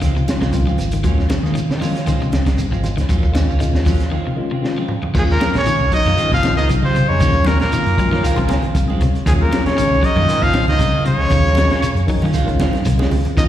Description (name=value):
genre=afrobeat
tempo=117 BPM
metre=4/4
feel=swing 54% on 16ths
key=Eb dorian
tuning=A4 = 439 Hz
part: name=electric guitar at the edge of break-up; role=arpeggios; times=0.0-13.5 s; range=C3 to Gb3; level=-24 LUFS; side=left 4 dB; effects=slapback echo
part: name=semi-hollow electric guitar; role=stabs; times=0.0-13.5 s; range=Eb3 to F4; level=-27 LUFS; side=right 6 dB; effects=slapback echo
part: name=hollow-body short-scale fingered electric bass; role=bass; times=0.0-13.5 s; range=Ab1 to Eb3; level=-18 LUFS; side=equal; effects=none
part: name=crunchy breakbeat drum kit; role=drums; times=0.0-13.5 s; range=crash cymbal, hi-hat, kick drum, snare drum, toms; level=-21 LUFS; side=equal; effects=none
part: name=congas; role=percussion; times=0.0-13.5 s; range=none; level=-26 LUFS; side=right 2 dB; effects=none
part: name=shekere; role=percussion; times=0.0-13.5 s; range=none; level=-29 LUFS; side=right 2 dB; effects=none
part: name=tine electric piano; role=accompaniment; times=0.3-13.5 s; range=Eb3 to Ab5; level=-26 LUFS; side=left 3 dB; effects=phaser, slapback echo
part: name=bright trumpet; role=melody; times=5.2-13.4 s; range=Ab4 to F5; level=-19 LUFS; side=equal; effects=slapback echo
part: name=raspy baritone saxophone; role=second line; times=5.2-13.4 s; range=Ab2 to F3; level=-27 LUFS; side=left 3 dB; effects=slapback echo
part: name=trombone with bucket mute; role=second line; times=5.2-13.4 s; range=Ab3 to F4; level=-29 LUFS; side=right 4 dB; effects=none
room=light reverb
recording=live gig heard through the venue's PA, recital hall reverb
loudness=-14 LUFS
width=side -12 dB against mid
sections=0.0-5.1 A section; 5.1-13.5 B section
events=break 4.1-5.1; drum fill 4.6-5.1, 12.7-13.4; tine electric piano fill 8.2-9.3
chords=0.0 Dbmaj9; 1.0 Ebm9; 2.1 Dbmaj9; 3.1 Ebm9; 4.1 Dbmaj9; 5.1 Ebm9; 6.2 Dbmaj9; 7.2 Ebm9; 8.2 Dbmaj9; 9.3 Ebm9; 10.3 Dbmaj9; 11.3 Ebm9; 12.3 Dbmaj9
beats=0.01 0.53 | 1.04 1.55 2.07 2.58 | 3.09 3.61 4.12 4.63 | 5.15 5.66 6.17 6.69 | 7.20 7.71 8.23 8.74 | 9.26 9.77 10.28 10.80 | 11.31 11.82 12.34 12.85 | 13.37